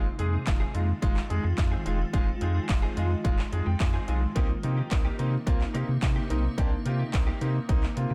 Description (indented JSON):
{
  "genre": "dance-pop",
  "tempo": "108 BPM",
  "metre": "4/4",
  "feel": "straight",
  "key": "C minor",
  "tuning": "A4 = 442 Hz",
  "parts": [
    { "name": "warm concert grand piano", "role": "accompaniment", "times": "0.0-8.1 s", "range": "Ab3 to Ab5", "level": "-37 LUFS", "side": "equal", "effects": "sidechain pumping" },
    { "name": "granular cloud pad", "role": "sustained chords", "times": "0.1-8.1 s", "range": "C3 to F4", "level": "-39 LUFS", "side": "equal", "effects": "built-in reverb, sidechain pumping" },
    { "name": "direct-recorded clean electric guitar", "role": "riff", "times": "0.0-8.1 s", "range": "Bb3 to Ab4", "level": "-42 LUFS", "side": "equal", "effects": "ensemble chorus" },
    { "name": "warm sub bass", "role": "bass", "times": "0.0-8.1 s", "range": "E1 to C3", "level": "-30 LUFS", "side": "equal", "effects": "sidechain pumping" },
    { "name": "punchy analog drum machine", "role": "drums", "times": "0.2-8.1 s", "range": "handclaps, hi-hat, kick drum", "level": "-30 LUFS", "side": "equal", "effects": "none" }
  ],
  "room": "digital ambience",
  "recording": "none",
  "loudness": "-27 LUFS",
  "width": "mono",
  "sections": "0.0-8.1 A section",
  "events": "grand piano fill 2.7-4.4",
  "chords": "0.0 Fm7; 4.4 Cm7"
}